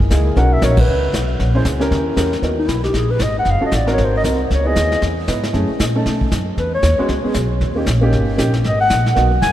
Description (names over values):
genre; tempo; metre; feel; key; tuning
jazz, small-group swing and bop; 232 BPM; 4/4; swing 60% on 8ths; G# minor; A4 = 440 Hz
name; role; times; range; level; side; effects
upright bass; bass; 0.0-9.5 s; F#1 to B2; -18 LUFS; equal; none
vintage brush drum kit; drums; 0.0-9.5 s; brushed snare drum, hi-hat, kick drum, ride cymbal, snare drum; -22 LUFS; equal; none
warm baby grand piano; accompaniment; 0.1-9.3 s; G#3 to B#4; -21 LUFS; equal; none
dark clarinet; melody; 0.4-9.5 s; D#4 to G#5; -20 LUFS; left 1 dB; none
room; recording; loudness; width
wet cathedral reverb, RT60 5.2 s; in a vast, echoing space; -14 LUFS; side -12 dB against mid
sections
0.0-2.4 A section; 2.4-9.5 B section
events
band accent 0.8; clarinet solo 2.4-9.5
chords
0.4 Bmaj7; 1.4 A#m7b5; 1.9 D#7b9; 2.4 G#m7; 3.5 D#m7b5; 4.0 G#7; 4.5 C#m9; 5.5 F#m7; 6.1 B7; 6.6 E6; 7.6 D#7; 8.6 G#m7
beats
0.10 | 0.36 0.62 0.88 1.14 | 1.40 1.65 1.91 2.17 | 2.43 2.69 2.95 3.21 | 3.46 3.72 3.98 4.24 | 4.50 4.76 5.02 5.28 | 5.54 5.80 6.05 6.31 | 6.57 6.83 7.09 7.35 | 7.61 7.87 8.13 8.39 | 8.65 8.91 9.16 9.42